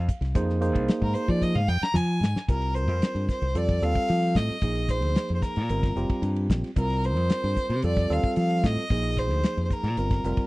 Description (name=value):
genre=electric jazz fusion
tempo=112 BPM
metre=4/4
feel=straight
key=C minor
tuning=A4 = 439 Hz
part: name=modern bright fingered electric bass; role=bass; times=0.0-10.4 s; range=F1 to F3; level=-26 LUFS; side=equal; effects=none
part: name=damped 70s drum kit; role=drums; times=0.1-10.5 s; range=hi-hat, kick drum, ride cymbal, snare drum, toms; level=-26 LUFS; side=equal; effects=vintage 12-bit sampler grit
part: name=tine electric piano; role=accompaniment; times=0.3-10.5 s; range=F3 to C5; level=-30 LUFS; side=right 2 dB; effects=none
part: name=clear violin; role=melody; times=1.0-10.5 s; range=Bb4 to Bb5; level=-30 LUFS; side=equal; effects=none
room=small room ambience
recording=dry, close 1970s-style studio recording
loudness=-23 LUFS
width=side -20 dB against mid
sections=0.0-2.5 A section; 2.5-10.5 B section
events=violin solo 0.0-2.5; drum fill 1.4-2.5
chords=0.0 Bb9sus4/C; 2.5 C5; 3.6 F9; 4.6 Bb9sus4; 5.7 Gm7; 6.8 C5; 7.8 F9; 8.9 Bb9sus4